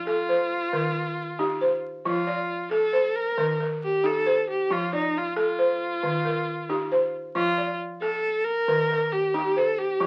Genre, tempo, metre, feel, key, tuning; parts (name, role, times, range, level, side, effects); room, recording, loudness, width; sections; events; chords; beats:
west african traditional, West African string and xylophone music; 91 BPM (dotted quarters); 12/8; straight; A4 = 437 Hz
clear viola; melody; 0.0-10.1 s; Eb4 to Bb4; -28 LUFS; equal
balafon; arpeggios; 0.0-10.1 s; Eb3 to D5; -28 LUFS; equal
moderate club reverb, RT60 0.5 s; very old 78 rpm record, vinyl crackle; -25 LUFS; mono
0.0-10.1 A section
0.0 F; 0.7 Eb; 2.1 F; 3.4 Eb; 4.7 F; 6.0 Eb; 7.3 F; 8.7 Eb
0.07 0.73 1.39 | 2.05 2.72 3.38 4.04 | 4.70 5.36 6.03 6.69 | 7.35 8.01 8.68 9.34 | 10.00